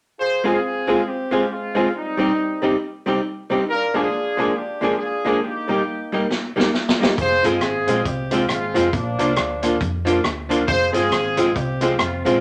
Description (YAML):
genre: ska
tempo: 137 BPM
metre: 4/4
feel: swing 59% on 8ths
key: F dorian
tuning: A4 = 440 Hz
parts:
  - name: warm horn section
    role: melody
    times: 0.2-12.4 s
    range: F3 to C5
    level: -25 LUFS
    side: equal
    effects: none
  - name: archtop guitar, miked and amplified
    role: accompaniment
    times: 0.4-12.4 s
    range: F3 to Ab4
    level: -24 LUFS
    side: equal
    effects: none
  - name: tack piano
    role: stabs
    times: 0.4-12.4 s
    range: G3 to F4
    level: -28 LUFS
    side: equal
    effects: none
  - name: vintage drum kit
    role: drums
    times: 6.3-12.3 s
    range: hi-hat, kick drum, rim click, snare drum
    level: -26 LUFS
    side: equal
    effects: none
  - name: hollow-body short-scale fingered electric bass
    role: bass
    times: 7.2-12.4 s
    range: F1 to F2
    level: -31 LUFS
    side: equal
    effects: none
room: wet studio reverb, RT60 0.6 s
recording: none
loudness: -21 LUFS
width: mono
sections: 0.2-12.4 A section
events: drum fill 6.3-7.2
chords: 0.2 Fm; 1.9 Cm; 3.7 Bb7; 5.4 Eb; 7.2 Fm; 8.9 Bb; 10.7 Fm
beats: | 0.19 0.63 1.07 1.50 | 1.94 2.38 2.81 3.25 | 3.69 4.12 4.56 5.00 | 5.43 5.87 6.31 6.75 | 7.18 7.62 8.06 8.50 | 8.93 9.37 9.81 10.25 | 10.68 11.12 11.56 12.00